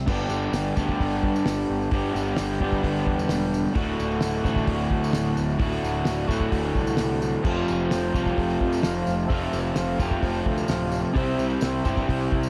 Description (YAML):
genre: garage rock duo or trio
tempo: 130 BPM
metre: 4/4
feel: straight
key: unclear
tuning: A4 = 440 Hz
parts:
  - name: combo organ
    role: sustained chords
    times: 0.0-0.1, 7.5-12.4 s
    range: G4 to G5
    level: -36 LUFS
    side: equal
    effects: spring reverb
  - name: crunchy overdriven guitar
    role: riff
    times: 0.0-12.5 s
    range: D2 to C5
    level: -27 LUFS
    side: equal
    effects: none
  - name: fuzz picked electric bass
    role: bass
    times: 0.0-12.5 s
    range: D1 to G2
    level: -32 LUFS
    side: equal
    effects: overdrive, tube saturation
  - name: cloth-damped thuddy drum kit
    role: drums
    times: 0.1-12.4 s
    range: crash cymbal, hi-hat, kick drum, snare drum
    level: -31 LUFS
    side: equal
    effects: none
  - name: tambourine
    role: percussion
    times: 0.1-12.5 s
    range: none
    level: -47 LUFS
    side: equal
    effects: none
room: light reverb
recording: none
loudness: -25 LUFS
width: mono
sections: 0.1-12.5 A section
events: none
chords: 0.1 G; 3.8 D; 7.5 F; 11.2 C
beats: | 0.08 0.54 1.00 1.46 | 1.93 2.39 2.85 3.31 | 3.77 4.23 4.69 5.15 | 5.61 6.07 6.53 7.00 | 7.46 7.92 8.38 8.84 | 9.30 9.77 10.23 10.69 | 11.16 11.62 12.08